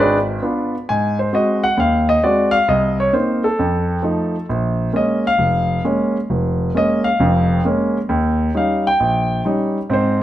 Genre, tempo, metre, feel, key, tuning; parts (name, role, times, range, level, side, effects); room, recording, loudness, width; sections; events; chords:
solo jazz; 133 BPM; 4/4; swing 67% on 8ths; A4 = 441 Hz
warm grand piano; solo; 0.0-10.2 s; F1 to Ab5; -15 LUFS; equal
moderate large studio reverb, RT60 1.5 s; -15 LUFS; side -13 dB against mid
0.0-10.2 A section
grand piano solo 0.0-10.2
0.0 Ddim7; 0.9 Ab7; 2.7 Cm7; 3.6 F7; 4.5 Bbm7; 8.1 Eb7